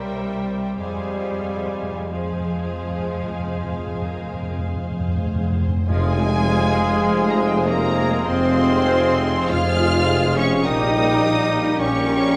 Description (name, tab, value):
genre	classical, slow romantic movement for symphony orchestra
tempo	45-54 BPM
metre	4/4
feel	rubato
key	F minor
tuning	A4 = 440 Hz
part	rich symphonic violin section	melody	0.0-12.4 s	Ab4 to F6	-32 LUFS	equal	none
part	dark cor anglais	second line	0.0-12.4 s	F3 to F4	-31 LUFS	equal	none
part	mellow clarinet	second line	0.0-12.4 s	Bb4 to Db5	-35 LUFS	equal	none
part	mellow hollow silver concert flute	second line	0.0-12.4 s	E5 to G5	-35 LUFS	equal	none
part	rich symphonic violin section	second line	0.0-12.4 s	Ab4 to Ab5	-36 LUFS	equal	none
part	mellow bassoon	accompaniment	0.0-12.4 s	G3 to Bb3	-32 LUFS	equal	none
part	warm studio viola section	accompaniment	0.0-12.4 s	F3 to C5	-36 LUFS	equal	none
part	mellow French horn section	sustained chords	0.0-12.4 s	F3 to F4	-29 LUFS	equal	none
part	rich symphonic cello section	bass	0.0-12.4 s	F3 to F4	-30 LUFS	equal	none
part	rich symphonic double bass section	bass	0.0-12.4 s	F1 to F2	-29 LUFS	equal	none
part	timpani	percussion	0.8-7.6 s	F2	-28 LUFS	equal	none
part	warm trombone section	sustained chords	5.9-12.4 s	F3 to C4	-32 LUFS	equal	none
part	mellow trumpet section	stabs	5.9-12.4 s	G4 to Ab4	-32 LUFS	equal	none
part	warm tuba	bass	5.9-12.4 s	F1 to Bb1	-29 LUFS	equal	none
room	wet recital hall reverb, RT60 1.9 s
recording	none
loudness	-21 LUFS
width	mono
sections	0.0-5.9 A section; 5.9-12.4 A section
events	timpani fill 0.8-5.9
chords	0.0 C7b9; 0.8 Fm; 10.7 Gdim/Bb